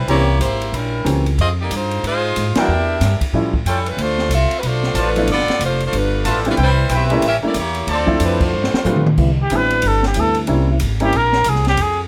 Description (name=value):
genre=jazz, big band swing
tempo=185 BPM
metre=4/4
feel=swing 62% on 8ths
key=C major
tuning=A4 = 445 Hz
part: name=edgy saxophone section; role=melody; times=0.0-9.1 s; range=F3 to E5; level=-22 LUFS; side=equal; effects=none
part: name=upright bass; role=bass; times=0.0-12.1 s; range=F1 to A2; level=-22 LUFS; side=equal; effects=none
part: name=clear baby grand piano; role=accompaniment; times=0.1-11.1 s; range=E3 to G4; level=-23 LUFS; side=equal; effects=none
part: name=clear trumpet section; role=stabs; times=0.1-0.2, 2.6-8.5 s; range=E4 to Bb5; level=-26 LUFS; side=equal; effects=none
part: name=open jazz drum kit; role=drums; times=0.1-11.9 s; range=crash cymbal, hi-hat, kick drum, ride cymbal, snare drum, toms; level=-26 LUFS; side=equal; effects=none
part: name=muted trombone section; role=sustained chords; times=9.2-10.8 s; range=C3 to E4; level=-27 LUFS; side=equal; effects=none
part: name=warm trumpet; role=melody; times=9.4-12.0 s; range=G4 to B4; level=-19 LUFS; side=equal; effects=none
room=little or no reverb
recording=close, detailed microphones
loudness=-17 LUFS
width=mono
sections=0.0-9.2 A section; 9.2-12.1 B section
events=band accent 2.5, 8.4; drum fill 8.5-9.2; trumpet solo 9.2-12.1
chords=0.1 C7b9; 1.4 Fm7; 2.7 Em7b5; 3.3 A7b13; 4.0 Dm7; 5.3 G13; 6.6 Cmaj7; 7.2 A7b9; 7.9 Dm7; 8.5 G9; 9.2 Cmaj7; 10.5 C7b9